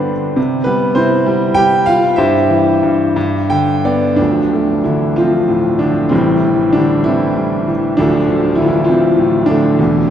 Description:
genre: classical, lyrical solo piano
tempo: 57-68 BPM (dotted quarters)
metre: 6/8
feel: rubato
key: C major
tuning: A4 = 440 Hz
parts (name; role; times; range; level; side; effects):
- clear concert grand piano; solo; 0.0-10.1 s; D1 to G5; -11 LUFS; equal; none
room: wet cathedral reverb, RT60 5.4 s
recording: recorded in a church or concert hall, nothing above 10.3 kHz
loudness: -11 LUFS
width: side -9 dB against mid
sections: 0.0-4.2 A section; 4.2-10.1 B section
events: grand piano fill 3.2-4.2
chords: 0.4 C; 2.2 C/G; 3.2 G; 4.2 Dm7; 6.1 Am7; 8.0 Dm7

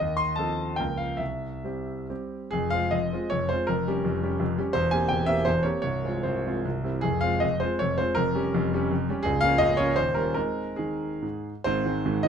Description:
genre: classical, romantic triple-time dance for piano with dotted rhythms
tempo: 126-186 BPM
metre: 3/4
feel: rubato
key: F minor, Ab major from 9.2 s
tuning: A4 = 440 Hz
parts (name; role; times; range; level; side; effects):
- clear concert grand piano; solo; 0.0-12.3 s; C1 to C6; -24 LUFS; equal; none
room: little or no reverb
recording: close, detailed microphones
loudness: -24 LUFS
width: side -7 dB against mid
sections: 0.0-2.5 A section; 2.5-11.7 B section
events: none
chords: 0.0 F7/Eb; 0.8 Bbm/Db; 1.2 C; 2.5 Fm; 3.7 Gm7b5/F; 4.7 C7/E; 5.8 Fm/C; 6.7 C; 7.0 Fm; 8.2 Gm7b5/F; 9.2 Bbm/Db; 10.0 Eb13; 10.4 Ab

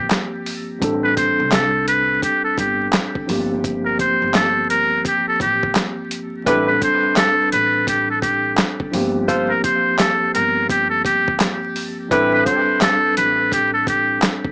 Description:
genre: hip hop, boom-bap hip-hop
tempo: 85 BPM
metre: 4/4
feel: swing 62% on 16ths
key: A phrygian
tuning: A4 = 440 Hz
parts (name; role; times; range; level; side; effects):
- trumpet with metal mute; melody; 0.0-14.2 s; G4 to C5; -18 LUFS; equal; high-pass filter, low-pass filter, tape echo
- tine electric piano; accompaniment; 0.0-14.5 s; G2 to A4; -23 LUFS; equal; medium stereo tremolo, cassette tape, high-pass filter, low-pass filter
- upright bass; bass; 0.0-14.2 s; G1 to C2; -29 LUFS; equal; tube saturation
- dusty soul sampler-style drum kit; drums; 0.1-14.5 s; handclaps, hi-hat, kick drum, snare drum; -20 LUFS; equal; overdrive
- edgy saxophone section; stabs; 6.5-12.6 s; E4 to C5; -20 LUFS; equal; high-pass filter, low-pass filter, tape echo
room: light reverb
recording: dry, gritty hardware recording, vinyl crackle, small speaker sound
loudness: -15 LUFS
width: side -35 dB against mid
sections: 0.0-6.5 A section; 6.5-14.5 B section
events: none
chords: 0.0 Gm11; 0.8 Am7; 3.3 Gm11; 6.5 Am7; 8.9 Gm11; 12.1 Am7

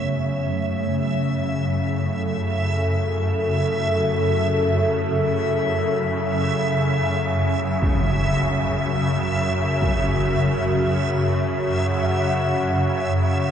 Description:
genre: dark ambient drone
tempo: free time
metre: none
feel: none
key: unclear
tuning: A4 = 441 Hz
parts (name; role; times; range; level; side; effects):
- dark analog pad; sustained chords; 0.0-13.5 s; F#4 to F#5; -26 LUFS; left 1 dB; chorus
- gamelan-type bossed gongs; arpeggios; 0.0-5.3 s; E2 to A3; -33 LUFS; right 5 dB; diffuse ambient delay
- swarming drone; drone; 0.0-13.5 s; F#2 to C#3; -22 LUFS; equal; built-in reverb
- backwards swelling texture; texture; 0.0-13.5 s; E5; -27 LUFS; right 2 dB; built-in reverb
- impact; percussion; 7.8-10.0 s; none; -28 LUFS; equal; low-pass filter on sfx
room: wet cathedral reverb, RT60 6.8 s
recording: in a vast, echoing space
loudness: -19 LUFS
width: side -8 dB against mid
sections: 0.0-13.5 A section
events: fade-out on analog synth pad 0.0-13.5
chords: 0.0 A6/E; 7.8 F#m7

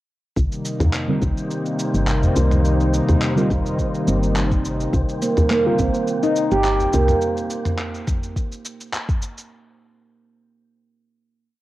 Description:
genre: organic downtempo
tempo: 105 BPM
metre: 4/4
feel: swing 54% on 16ths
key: C minor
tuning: A4 = 439 Hz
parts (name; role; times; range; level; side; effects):
- warm analog pad; sustained chords; 0.4-7.2 s; C3 to Eb4; -23 LUFS; left 1 dB; chorus, sidechain pumping, cassette tape
- woody FM bass; bass; 0.4-7.1 s; G1 to Eb2; -19 LUFS; equal; none
- dusty soul sampler-style drum kit; drums; 0.4-9.5 s; cabasa, handclaps, toms; -27 LUFS; equal; none
- electronic kick drum; drums; 0.4-9.2 s; none; -23 LUFS; equal; none
- wind-like tuned noise texture; texture; 1.1-7.2 s; C4 to C5; -32 LUFS; equal; built-in reverb, cassette tape
- deep mellow chord stab; accompaniment; 1.1-5.8 s; D3 to Bb4; -24 LUFS; equal; chorus, sidechain pumping, cassette tape, tape echo
- udu; percussion; 2.2-9.2 s; none; -26 LUFS; equal; none
- handpan; arpeggios; 5.2-7.2 s; Bb3 to G4; -20 LUFS; right 2 dB; cassette tape, tape echo
room: moderate spring reverb, RT60 1.6 s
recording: home recording on cassette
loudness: -18 LUFS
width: side -16 dB against mid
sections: 0.4-9.5 groove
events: filter sweep on synth stab 0.4-7.2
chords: 0.4 Cm7

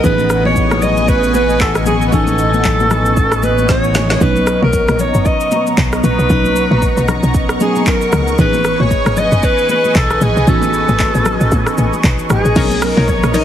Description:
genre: amapiano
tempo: 115 BPM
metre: 4/4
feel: swing 58% on 16ths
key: unclear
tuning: A4 = 440 Hz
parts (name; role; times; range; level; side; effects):
- breathy alto saxophone; melody; 0.0-13.4 s; G#4 to D#5; -16 LUFS; equal; ping-pong delay
- bell-like FM electric piano; accompaniment; 0.0-13.4 s; E3 to G#5; -21 LUFS; right 2 dB; chorus
- lush unison pad; sustained chords; 0.0-13.4 s; B3 to C#6; -20 LUFS; left 1 dB; chorus, phaser
- fat analog bass; bass; 0.0-4.2 s; A1; -18 LUFS; equal; none
- deep house drum kit; drums; 0.0-13.4 s; crash cymbal, handclaps, hi-hat, kick drum, rim click, shaker, snare drum; -17 LUFS; equal; none
- congas; percussion; 0.0-13.4 s; none; -22 LUFS; left 6 dB; none
- woody log drum bass; bass; 4.2-13.4 s; F#1 to A2; -16 LUFS; equal; none
- analog pluck; stabs; 12.6-13.4 s; D#4 to C#5; -20 LUFS; left 3 dB; chorus
room: light reverb, digital ambience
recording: heavily compressed radio sound, multiband compression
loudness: -11 LUFS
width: side -10 dB against mid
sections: 0.0-12.6 A section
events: drum fill 3.7-4.2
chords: 0.0 Amaj9#11; 4.2 Bmaj9; 8.4 Amaj9#11; 12.6 Bmaj9

